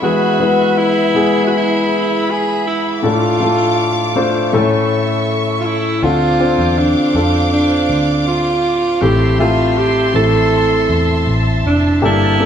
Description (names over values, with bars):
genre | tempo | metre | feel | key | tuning
pop ballad | 80 BPM | 4/4 | straight | D minor | A4 = 439 Hz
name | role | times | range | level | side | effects
breathy alto saxophone | melody | 0.0-12.5 s | D4 to A4 | -16 LUFS | right 3 dB | none
warm grand piano | accompaniment | 0.0-12.5 s | G2 to E5 | -16 LUFS | left 3 dB | none
dark studio string section | sustained chords | 0.0-12.5 s | G#4 to D6 | -21 LUFS | right 1 dB | none
vintage muted picked electric bass | bass | 6.0-12.5 s | F1 to F2 | -18 LUFS | equal | none
room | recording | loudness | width
wet large studio reverb, RT60 1.2 s | band playing live in one room | -12 LUFS | side -8 dB against mid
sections
0.0-12.5 A section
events
none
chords
0.0 E; 3.0 Dm/A; 4.5 A; 6.0 Dm7; 9.0 Am